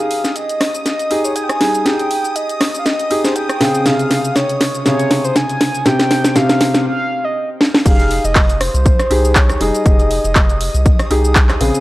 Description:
deep house; 120 BPM; 4/4; swing 55% on 16ths; F minor; A4 = 440 Hz
mellow horn-like synth lead; melody; 0.0-11.6 s; C5 to Ab5; -20 LUFS; equal; chorus, tape echo
felt-muted upright piano; stabs; 0.0-11.8 s; C3 to Ab4; -19 LUFS; left 1 dB; sidechain pumping, tape echo
house drum kit; drums; 0.0-11.8 s; crash cymbal, handclaps, hi-hat, rim click, shaker, snare drum; -17 LUFS; equal; overdrive
string machine, violins; texture; 0.0-11.8 s; Eb6; -31 LUFS; equal; ensemble chorus
round analog bass; bass; 7.9-11.7 s; F1 to C2; -18 LUFS; equal; sidechain pumping
cloth-damped thuddy drum kit; drums; 7.9-11.7 s; hi-hat, shaker, snare drum; -38 LUFS; equal
electronic kick drum; drums; 7.9-11.5 s; -12 LUFS; equal; overdrive
light reverb; dry, gritty hardware recording; -12 LUFS; side -17 dB against mid
0.0-7.9 A section; 7.9-11.8 B section
build-up 0.0-7.9; drum fill 0.0-6.9, 7.6; break 6.9-7.9; drop 7.9-11.8
0.0 Fm9 (rootless); 3.6 Dbmaj9/C; 5.9 Cm; 7.9 Fm9

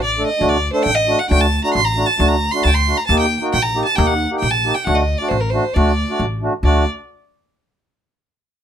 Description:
klezmer; 135 BPM; 2/4; straight; D phrygian dominant; A4 = 436 Hz
rich violin; melody; 0.0-6.8 s; Bb4 to C6; -18 LUFS; right 1 dB
upright bass; bass; 0.0-6.8 s; A1 to Eb2; -19 LUFS; equal
mellow accordion; accompaniment; 0.2-6.8 s; A3 to A4; -20 LUFS; right 1 dB
light reverb; close, detailed microphones; -14 LUFS; side -9 dB against mid
0.0-6.6 A section
0.0 D; 3.1 Eb; 4.9 D

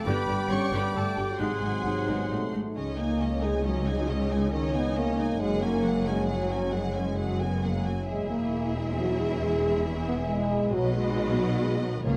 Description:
cinematic, heroic adventure film score; 135 BPM; 3/4; straight; A4 = 436 Hz
warm symphonic violin section; melody; 0.0-12.2 s; Db5 to C#6; -41 LUFS; equal
rich symphonic violin section; second line; 0.0-12.2 s; Gb4 to D6; -43 LUFS; equal
warm clarinet; second line; 0.0-2.3 s; F#4 to C#5; -39 LUFS; equal
mellow French horn section; sustained chords; 0.0-12.2 s; Eb3 to C#4; -32 LUFS; equal
concert harp; arpeggios; 0.0-12.2 s; E2 to Cb6; -37 LUFS; equal
clear oboe; second line; 0.1-2.5 s; F#5 to G5; -38 LUFS; equal
mellow hollow concert flute; second line; 0.1-2.5 s; B#5 to D6; -39 LUFS; equal
warm symphonic viola section; accompaniment; 0.1-12.2 s; D3 to G4; -39 LUFS; equal
bright trombone section; sustained chords; 0.1-2.5 s; B#2 to G3; -37 LUFS; equal
rich symphonic cello section; bass; 0.1-12.2 s; Db2 to Cb3; -36 LUFS; equal
rich symphonic double bass section; bass; 0.1-12.2 s; E1 to Db2; -35 LUFS; equal
timpani; percussion; 12.1-12.2 s; Db3; -28 LUFS; equal
wet recital hall reverb, RT60 1.5 s; -28 LUFS; mono
0.0-2.8 A section; 2.8-12.2 B section
0.0 G; 1.4 G#7; 2.8 Dbsus2; 5.4 Gbsus2; 8.1 E; 10.7 Cb

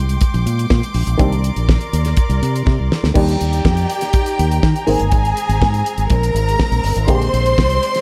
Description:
disco; 122 BPM; 4/4; straight; Eb major; A4 = 440 Hz
muted clav; accompaniment; 0.0-8.0 s; D3 to Ab4; -23 LUFS; equal; phaser
clear studio string section; sustained chords; 0.0-8.0 s; Eb3 to D6; -30 LUFS; equal
fingered electric bass; bass; 0.0-7.8 s; G1 to Eb3; -20 LUFS; equal
damped 70s drum kit; drums; 0.1-8.0 s; crash cymbal, hi-hat, kick drum, snare drum; -20 LUFS; equal
warm studio violin section; second line; 3.1-8.0 s; G4 to C6; -22 LUFS; equal
light reverb; -16 LUFS; mono
0.0-3.2 A section; 3.2-8.0 B section
drum fill 2.7-3.2
0.0 Bb13; 1.2 Cm9; 3.2 Ebmaj7; 4.9 Abadd9; 7.1 Bb13

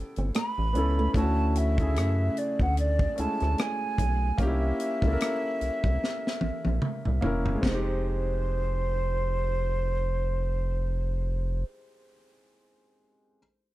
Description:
R&B, neo-soul; 74 BPM; 4/4; swing 58% on 16ths; A4 = 441 Hz
warm concert grand piano; accompaniment; 0.0-13.4 s; C#3 to Bb4; -32 LUFS; left 1 dB
rubbery square bass; bass; 0.0-11.6 s; E1 to F#2; -27 LUFS; equal
flamenco guitar; second line; 0.2-1.1 s; A3 to C4; -34 LUFS; right 4 dB
tight funk drum kit; drums; 0.2-7.9 s; china cymbal, hi-hat, kick drum, rim click, snare drum, toms; -29 LUFS; equal
breathy mellow jazz flute; melody; 0.4-11.6 s; C5 to B5; -32 LUFS; right 1 dB
light reverb; dark, warm production; -25 LUFS; side -16 dB against mid
0.0-7.6 A section; 7.6-10.9 B section
drum fill 6.0-7.6
0.0 A7; 1.1 Dmaj9; 4.4 C7b9; 7.6 Fm9

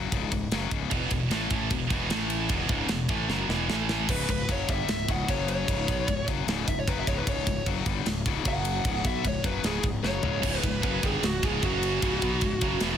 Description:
heavy metal; 151 BPM; 4/4; straight; C# minor; A4 = 442 Hz
high-gain distorted guitar; riff; 0.0-13.0 s; C#2 to B3; -31 LUFS; left 9 dB; distortion
fuzz fingered electric bass; bass; 0.0-13.0 s; C#1 to B1; -32 LUFS; right 1 dB; overdrive
tight metal drum kit; drums; 0.1-12.9 s; crash cymbal, kick drum, ride cymbal, snare drum, toms; -30 LUFS; right 1 dB; soft clipping on kick
heavy high-gain guitar; riff; 0.9-4.1, 10.4-13.0 s; C#2 to B3; -31 LUFS; right 15 dB; distortion
dark smooth lead guitar; melody; 4.1-12.8 s; F#4 to F#5; -31 LUFS; right 1 dB; overdrive
small room ambience; dense, heavily limited modern master; -25 LUFS; side -9 dB against mid
0.0-4.1 A section; 4.1-13.0 B section
drum fill 3.3-4.1, 10.0-10.4; half time 4.1-13.0; lead electric guitar solo 4.1-13.0
0.0 C#5; 0.9 E5; 2.1 A5; 2.5 E5; 3.7 A5; 4.1 C#m; 5.3 F#5; 5.7 C#5; 8.5 F#5; 8.8 C#5; 11.6 F#5; 12.0 C#m

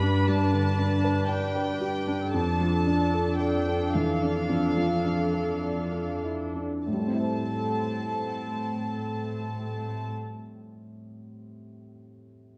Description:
cinematic; 48-59 BPM; 4/4; rubato; A minor; A4 = 435 Hz
warm studio violin section; melody; 0.0-10.1 s; F5 to B5; -36 LUFS; equal
clear baby grand piano; accompaniment; 0.0-12.6 s; F2 to D5; -32 LUFS; equal
warm studio viola section; accompaniment; 0.0-10.1 s; C4 to B4; -34 LUFS; equal
warm studio cello section; bass; 0.0-10.1 s; F2 to A2; -33 LUFS; equal
moderate scoring stage reverb, RT60 1.4 s; dark, warm production; -27 LUFS; mono
0.0-6.9 A section; 6.9-11.7 B section
slowing down 0.0-6.9
0.0 G; 2.3 Dmadd9/F; 6.9 Am7

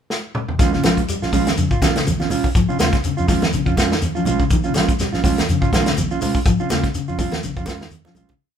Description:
afrobeat; 123 BPM; 4/4; swing 55% on 16ths; Bb dorian; A4 = 441 Hz
warm soul drum kit; drums; 0.1-8.4 s; hi-hat, kick drum, snare drum, toms; -20 LUFS; left 1 dB
mellow electric guitar; arpeggios; 0.6-8.4 s; C3 to G3; -24 LUFS; left 4 dB
mellow electric guitar; stabs; 0.6-8.3 s; Ab3 to F4; -22 LUFS; right 5 dB
vintage muted fingered electric bass; bass; 0.6-8.3 s; Ab1 to F2; -25 LUFS; equal
congas; percussion; 0.6-8.4 s; -27 LUFS; right 3 dB
shekere; percussion; 0.6-8.4 s; -29 LUFS; left 2 dB
moderate large studio reverb, RT60 1.1 s; band playing live in one room; -16 LUFS; side -8 dB against mid
0.0-0.6 pickup bar; 0.6-8.4 groove
drum fill 0.1-0.6, 7.8-8.4; fade-out 6.5-8.4
0.0 N.C.; 0.6 Bbm7

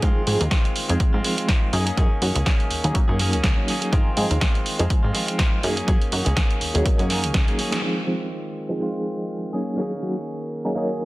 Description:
filtered disco house; 123 BPM; 4/4; swing 56% on 16ths; Ab mixolydian; A4 = 442 Hz
barky reed electric piano; accompaniment; 0.0-11.1 s; F3 to Bb4; -26 LUFS; equal; overdrive, fast tremolo, phaser, sidechain pumping, low-pass filter
direct-recorded clean electric guitar; riff; 0.0-11.1 s; Eb3 to Ab4; -29 LUFS; equal; vintage 12-bit sampler grit, sidechain pumping, low-pass filter
plucky analog bass; bass; 0.0-7.4 s; Db2 to Ab2; -23 LUFS; equal; sidechain pumping, low-pass filter
electronic kick drum; drums; 0.0-7.5 s; -20 LUFS; equal
punchy analog drum machine; drums; 0.0-7.8 s; hi-hat, snare drum; -26 LUFS; right 1 dB; sidechain pumping on hats, low-pass filter on hats, low-pass filter on snare
light reverb, digital ambience; dense, heavily limited modern master; -20 LUFS; side -19 dB against mid
0.0-7.8 A section; 7.8-11.1 B section
drum fill 7.3-7.8; band accent 7.7; filter sweep 7.8-11.1
0.0 Ab6; 1.7 Gb69; 3.9 Ab6; 5.6 Gb69; 7.8 Ab6; 9.5 Gb69

